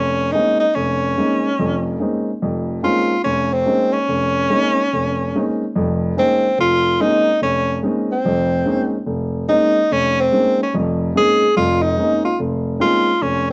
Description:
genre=jazz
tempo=144 BPM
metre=4/4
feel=swing 65% on 8ths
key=Bb minor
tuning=A4 = 440 Hz
part: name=bright tenor saxophone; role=melody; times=0.0-13.5 s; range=C4 to Ab4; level=-19 LUFS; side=equal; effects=none
part: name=warm baby grand piano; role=accompaniment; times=0.0-13.5 s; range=F1 to Eb4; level=-22 LUFS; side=equal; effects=none
room=wet small room reverb, RT60 0.5 s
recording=home recording on cassette, nothing above 8.0 kHz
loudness=-18 LUFS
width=mono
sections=0.0-13.5 A section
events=none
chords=0.0 Bbm11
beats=0.33 | 0.75 1.17 1.58 2.00 | 2.42 2.83 3.25 3.67 | 4.08 4.50 4.91 5.33 | 5.74 6.16 6.58 6.99 | 7.41 7.82 8.24 8.65 | 9.07 9.48 9.90 10.31 | 10.73 11.14 11.56 11.97 | 12.39 12.80 13.21

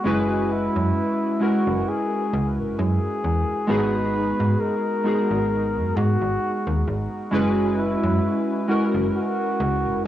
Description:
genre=vaporwave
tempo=66 BPM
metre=4/4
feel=swing 55% on 16ths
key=unclear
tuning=A4 = 440 Hz
part: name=breathy flugelhorn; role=melody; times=0.0-10.0 s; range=E4 to B4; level=-26 LUFS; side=equal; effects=tape echo
part: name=warbly lo-fi synth keys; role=accompaniment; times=0.0-10.1 s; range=G#3 to B4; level=-23 LUFS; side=equal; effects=ensemble chorus, cassette tape
part: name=slap-like FM bass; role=bass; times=0.1-10.0 s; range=F#1 to G#2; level=-24 LUFS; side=equal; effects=none
room=light reverb, studio reverb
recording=home recording on cassette, small room ambience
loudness=-20 LUFS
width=side -12 dB against mid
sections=0.0-10.1 A section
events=none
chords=0.1 F#9sus4; 3.7 G#m9; 7.3 F#9sus4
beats=| 0.05 0.96 1.87 2.78 | 3.69 4.60 5.51 6.42 | 7.33 8.23 9.14 10.05

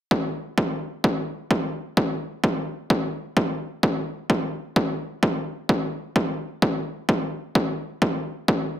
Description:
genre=EDM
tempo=129 BPM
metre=4/4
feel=straight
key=none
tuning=none
part: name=electronic kick drum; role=drums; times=0.1-8.6 s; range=none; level=-22 LUFS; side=equal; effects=overdrive, high-pass filter on kick, high-pass filter on room
room=little or no reverb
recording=dense, heavily limited modern master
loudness=-23 LUFS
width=side -11 dB against mid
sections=0.1-8.8 A section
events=none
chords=none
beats=| 0.11 0.58 1.04 1.51 | 1.97 2.44 2.90 3.37 | 3.83 4.30 4.76 5.23 | 5.69 6.16 6.62 7.09 | 7.55 8.02 8.48

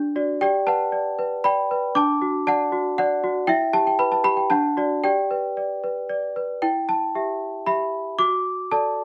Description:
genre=classical, lullaby for celesta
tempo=116 BPM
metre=3/4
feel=straight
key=G major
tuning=A4 = 440 Hz
part: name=worn celesta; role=solo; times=0.0-9.0 s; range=D4 to D6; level=-22 LUFS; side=equal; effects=none
room=moderate studio reverb, RT60 0.5 s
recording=none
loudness=-23 LUFS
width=mono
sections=0.0-6.6 A section; 6.6-9.0 B section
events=none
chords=0.4 G; 2.0 D; 3.5 Em; 4.5 D; 5.0 G; 6.6 Em; 8.2 D/F#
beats=| 0.41 0.93 1.44 | 1.95 2.46 2.98 | 3.48 3.99 4.50 | 5.03 5.57 6.10 | 6.63 7.15 7.67 | 8.19 8.71

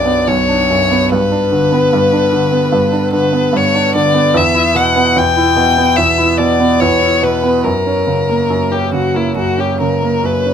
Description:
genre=classical, slow romantic movement for piano trio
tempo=68-76 BPM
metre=4/4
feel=rubato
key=unclear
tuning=A4 = 444 Hz
part: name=rich violin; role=melody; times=0.0-10.5 s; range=E4 to G5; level=-13 LUFS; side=left 4 dB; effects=none
part: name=bright concert grand piano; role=accompaniment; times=0.0-10.5 s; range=B1 to E4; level=-14 LUFS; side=right 3 dB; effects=none
room=light reverb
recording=minimal, uncompressed stereo recording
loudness=-11 LUFS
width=side -8 dB against mid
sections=0.0-10.5 A section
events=none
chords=0.0 Bm; 1.1 G; 4.4 Em; 7.6 F#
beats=0.26 | 1.10 1.92 2.72 3.54 | 4.35 5.17 5.98 6.80 | 7.64 8.50 9.37 10.25

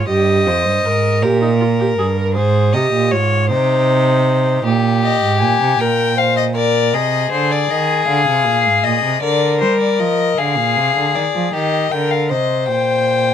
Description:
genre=classical, baroque-style fugue for string quartet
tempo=52 BPM (dotted quarters)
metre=12/8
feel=straight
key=Ab major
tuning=A4 = 440 Hz
part: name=rich violin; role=second line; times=0.0-13.3 s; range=G4 to Eb5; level=-17 LUFS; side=left 4 dB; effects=none
part: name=rich viola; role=accompaniment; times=0.0-4.6 s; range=Eb4 to C5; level=-20 LUFS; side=right 2 dB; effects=none
part: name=rich cello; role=bass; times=0.0-13.3 s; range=F2 to G3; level=-18 LUFS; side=right 4 dB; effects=none
part: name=rich violin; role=melody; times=5.0-13.3 s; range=C5 to Ab5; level=-18 LUFS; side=left 7 dB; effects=none
room=light reverb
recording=none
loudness=-13 LUFS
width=side -9 dB against mid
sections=0.0-13.3 A section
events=none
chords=0.1 Eb; 2.4 Ab; 4.6 Eb (rootless); 6.9 Ab/C; 9.2 Bb7/D; 11.5 Eb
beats=| 0.08 1.22 2.36 3.50 | 4.65 5.79 6.93 8.08 | 9.22 10.38 11.53 12.69

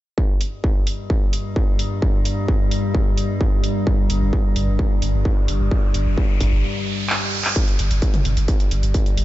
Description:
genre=driving peak-time techno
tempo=130 BPM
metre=4/4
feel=straight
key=unclear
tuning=A4 = 440 Hz
part: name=metallic inharmonic drone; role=drone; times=0.9-9.2 s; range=G2 to G3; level=-25 LUFS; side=left 1 dB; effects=chorus, built-in reverb, sidechain pumping
part: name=electronic kick drum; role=drums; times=0.2-9.0 s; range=none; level=-19 LUFS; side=equal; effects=distortion
part: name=techno drum kit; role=drums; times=0.4-9.2 s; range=handclaps, hi-hat, toms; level=-26 LUFS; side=equal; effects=none
part: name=riser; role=sound effects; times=5.3-7.6 s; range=none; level=-30 LUFS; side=right 3 dB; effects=none
part: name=saturated sub bass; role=bass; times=4.1-9.2 s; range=G1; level=-22 LUFS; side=equal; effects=overdrive, sidechain pumping, low-pass filter
room=little or no reverb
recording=nothing above 7.8 kHz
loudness=-17 LUFS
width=side -15 dB against mid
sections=0.2-7.6 A section; 7.6-9.2 B section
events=riser 5.3-7.6; stop 6.6-7.6; drum fill 7.1-7.6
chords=none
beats=| 0.18 0.64 1.10 1.56 | 2.02 2.48 2.94 3.41 | 3.87 4.33 4.79 5.25 | 5.71 6.18 6.64 7.10 | 7.56 8.02 8.48 8.95

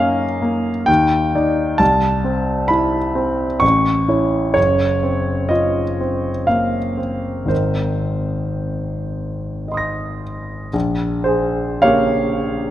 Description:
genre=classical, impressionist solo piano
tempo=52-66 BPM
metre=3/4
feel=rubato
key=unclear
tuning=A4 = 439 Hz
part: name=clear grand piano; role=solo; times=0.0-12.7 s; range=Gb1 to Bb6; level=-16 LUFS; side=equal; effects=none
room=light reverb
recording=close, detailed microphones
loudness=-16 LUFS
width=side -13 dB against mid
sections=0.0-10.7 A section; 10.7-12.7 B section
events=none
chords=0.0 Gbmaj7; 0.9 Ebmaj7; 1.8 Cmaj7; 3.6 A; 4.6 Gbmaj7#11; 7.5 Abadd9; 10.7 Bbm6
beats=0.88 | 1.80 2.71 3.63 | 4.57 5.52 6.49 | 7.50 8.59 9.68 | 10.74 11.84

